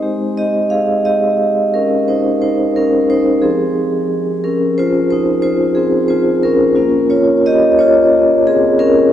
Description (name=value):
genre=classical, contemporary piece for solo vibraphone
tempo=89 BPM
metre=5/4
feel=rubato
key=Ab major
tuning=A4 = 440 Hz
part: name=vibraphone with medium hard mallets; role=solo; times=0.0-9.1 s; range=F3 to F5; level=-11 LUFS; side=equal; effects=none
room=wet cathedral reverb, RT60 4.6 s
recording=heard from further back in the room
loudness=-11 LUFS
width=side -10 dB against mid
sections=0.0-9.1 A section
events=none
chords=0.0 Abmaj7; 3.4 Fmadd9; 6.8 Bbm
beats=| 0.02 0.71 1.40 2.08 2.76 | 3.44 4.12 4.79 5.45 6.12 | 6.79 7.46 8.14 8.80